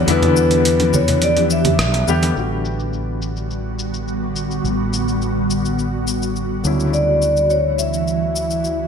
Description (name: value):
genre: sunset chillout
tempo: 105 BPM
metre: 4/4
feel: straight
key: unclear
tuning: A4 = 441 Hz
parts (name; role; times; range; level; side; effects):
- warm concert grand piano; accompaniment; 0.0-8.9 s; C#3 to G4; -24 LUFS; left 2 dB; auto-pan, low-pass filter, digital delay
- ethereal airy pad; sustained chords; 0.0-8.9 s; D3 to G4; -22 LUFS; right 1 dB; ensemble chorus, built-in reverb, phaser
- fretless electric bass; bass; 0.0-8.9 s; A1 to E2; -22 LUFS; right 1 dB; none
- vibraphone with medium mallets; melody; 0.1-2.0, 6.9-8.9 s; B4 to E5; -19 LUFS; left 2 dB; ping-pong delay
- dusty soul sampler-style drum kit; drums; 0.1-8.8 s; congas, hi-hat, rim click, shaker; -24 LUFS; right 1 dB; overdrive, low-pass filter on hats, studio reverb, low-pass filter on perc, low-pass filter on snare, gated reverb
- congas; percussion; 0.2-2.3 s; none; -26 LUFS; left 2 dB; none
room: wet lush hall reverb, RT60 2.0 s, studio reverb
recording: bright 1980s-style digital production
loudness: -16 LUFS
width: side -6 dB against mid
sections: 0.0-2.4 A section; 2.4-8.9 B section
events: none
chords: 0.0 Em7; 2.4 A13sus4; 6.6 Dmaj9